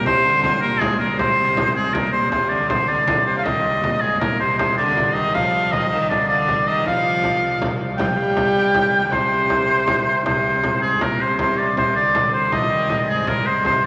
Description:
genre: medieval dance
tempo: 106 BPM (dotted quarters)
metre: 6/8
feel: straight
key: C minor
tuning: A4 = 444 Hz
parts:
  - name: clear shawm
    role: melody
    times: 0.0-13.8 s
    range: Ab4 to G5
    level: -20 LUFS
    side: equal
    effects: none
  - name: rich viola da gamba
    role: second line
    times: 0.0-13.8 s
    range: Ab2 to G3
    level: -27 LUFS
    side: equal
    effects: none
  - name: pipe organ, foundations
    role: drone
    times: 0.0-13.9 s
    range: C3 to G3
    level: -32 LUFS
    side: equal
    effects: none
  - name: frame drum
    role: percussion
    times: 0.1-13.9 s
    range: none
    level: -28 LUFS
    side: equal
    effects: none
room: wet cathedral reverb, RT60 4.8 s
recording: vinyl crackle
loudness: -19 LUFS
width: mono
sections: 0.0-2.3 A section; 2.3-11.4 B section; 11.4-13.9 B section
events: none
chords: none

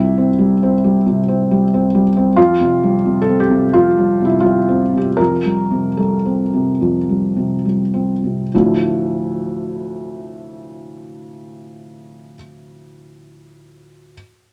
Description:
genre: neoclassical minimalist piano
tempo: 67-92 BPM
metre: 4/4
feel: rubato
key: D minor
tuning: A4 = 440 Hz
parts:
  - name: felt-muted upright piano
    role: solo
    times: 0.0-14.2 s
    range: D2 to Bb4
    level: -16 LUFS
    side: equal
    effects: none
room: light reverb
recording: none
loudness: -16 LUFS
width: mono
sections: 0.0-8.5 A section; 8.5-11.9 B section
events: slowing down 1.1-8.5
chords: 0.0 C; 2.4 Fadd9; 8.5 Dmadd9

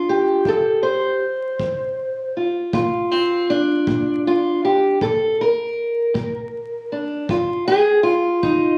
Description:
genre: acoustic country blues, solo or duo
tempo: 53 BPM (dotted quarters)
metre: 12/8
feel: straight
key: unclear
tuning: A4 = 440 Hz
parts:
  - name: fingerpicked steel-string acoustic guitar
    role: melody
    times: 0.0-8.8 s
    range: F2 to C5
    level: -20 LUFS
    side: equal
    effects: none
  - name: kick drum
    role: drums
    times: 0.5-8.6 s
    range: none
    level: -33 LUFS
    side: equal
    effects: none
room: light reverb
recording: recorded on a phone in the room, studio reverb, vinyl crackle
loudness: -20 LUFS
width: mono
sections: 0.0-8.8 A section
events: none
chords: 0.0 N.C.; 2.7 Bb; 7.3 N.C.

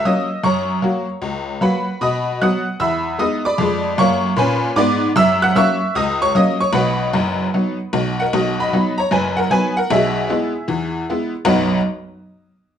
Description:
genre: jazz, stride piano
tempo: 152 BPM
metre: 4/4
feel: swing 64% on 8ths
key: B major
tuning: A4 = 440 Hz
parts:
  - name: tack piano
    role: solo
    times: 0.0-11.8 s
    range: F#1 to F#6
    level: -16 LUFS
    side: equal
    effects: none
room: moderate club reverb, RT60 0.8 s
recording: none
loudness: -16 LUFS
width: side -9 dB against mid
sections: 0.0-8.3 A section; 8.3-11.5 B section; 11.5-12.8 C section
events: none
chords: 0.4 F#; 2.0 B; 2.8 Emaj7; 3.6 Fdim7; 5.2 F#7; 6.7 B; 9.9 E/B; 11.5 B

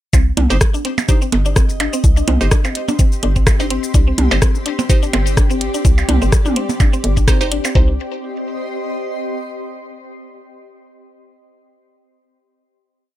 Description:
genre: minimal techno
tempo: 126 BPM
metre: 4/4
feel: swing 55% on 16ths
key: C minor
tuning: A4 = 439 Hz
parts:
  - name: mallet-like synth pluck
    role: riff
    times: 0.1-8.0 s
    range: C4 to D4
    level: -24 LUFS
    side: left 1 dB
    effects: analog chorus, sidechain pumping, ping-pong delay
  - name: hollow knocking FM bass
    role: bass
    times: 0.1-8.0 s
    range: G1 to C2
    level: -17 LUFS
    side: equal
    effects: sidechain pumping
  - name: electronic kick drum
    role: drums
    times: 0.1-7.9 s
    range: none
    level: -13 LUFS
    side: equal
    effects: none
  - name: garage drum kit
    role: drums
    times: 0.1-7.7 s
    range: hi-hat, rim click, shaker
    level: -23 LUFS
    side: left 1 dB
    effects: none
  - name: electronic percussion blips and toms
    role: percussion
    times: 0.1-7.7 s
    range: none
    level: -22 LUFS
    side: right 4 dB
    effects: overdrive, ping-pong delay
  - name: granular cloud pad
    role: texture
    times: 0.9-9.6 s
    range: C4 to C6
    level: -26 LUFS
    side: left 2 dB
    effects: built-in reverb, sidechain pumping
  - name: wavetable chord stab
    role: stabs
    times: 0.5-7.9 s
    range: Eb4 to C5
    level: -24 LUFS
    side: right 2 dB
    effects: ping-pong delay
  - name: swarming drone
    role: texture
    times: 4.9-7.8 s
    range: G4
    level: -34 LUFS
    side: equal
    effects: built-in reverb, sidechain pumping
room: little or no reverb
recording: none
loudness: -13 LUFS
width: side -14 dB against mid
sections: 0.1-7.8 drop; 7.8-9.7 final chord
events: drop 0.1-7.8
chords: 0.1 Cm

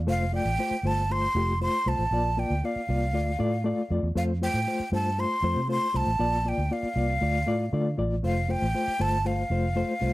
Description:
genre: uptempo 1960s-style soul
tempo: 118 BPM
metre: 4/4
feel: straight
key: F major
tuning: A4 = 440 Hz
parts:
  - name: mellow reed electric piano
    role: accompaniment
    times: 0.0-10.1 s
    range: A3 to D5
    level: -29 LUFS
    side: left 2 dB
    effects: fast tremolo
  - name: vintage muted fingered electric bass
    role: bass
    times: 0.0-10.1 s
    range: F1 to D3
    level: -28 LUFS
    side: right 1 dB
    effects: none
  - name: breathy jazz flute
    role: melody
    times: 0.1-10.1 s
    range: F5 to C6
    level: -29 LUFS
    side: equal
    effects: none
room: light reverb, small room ambience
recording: none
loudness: -24 LUFS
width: side -17 dB against mid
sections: 0.0-10.1 A section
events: none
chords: 0.1 F; 2.1 Bb; 3.1 Dm; 4.2 F; 6.2 Bb; 7.2 Dm; 8.2 F

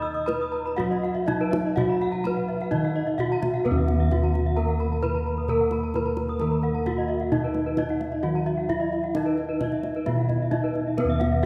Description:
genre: Balinese gamelan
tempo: 131 BPM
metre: 4/4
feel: straight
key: Eb pelog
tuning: A4 = 439 Hz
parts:
  - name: gamelan-type bronze metallophone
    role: melody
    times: 0.0-11.5 s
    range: Cb4-20c to Eb5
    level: -30 LUFS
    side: equal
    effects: none
  - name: gamelan-type bronze metallophone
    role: accompaniment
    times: 0.0-11.5 s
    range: Eb3 to Eb4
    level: -37 LUFS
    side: equal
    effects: none
  - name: gamelan-type bronze metallophone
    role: arpeggios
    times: 0.0-11.4 s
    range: Cb5-20c to Fb6+20c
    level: -36 LUFS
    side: equal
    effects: none
  - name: gamelan-type bossed gongs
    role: bass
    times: 0.0-11.5 s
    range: Eb2 to Eb5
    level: -28 LUFS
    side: equal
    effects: none
  - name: kendang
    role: percussion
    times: 0.0-11.3 s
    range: none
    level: -36 LUFS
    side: equal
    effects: none
  - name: gamelan-type bronze metallophone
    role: arpeggios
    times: 0.1-11.5 s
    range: Cb5-20c to Eb6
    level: -35 LUFS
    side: equal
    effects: none
room: wet church reverb, RT60 3.1 s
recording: recorded in a church or concert hall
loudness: -25 LUFS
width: mono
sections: 0.0-3.7 A section; 3.7-11.5 B section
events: none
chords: none

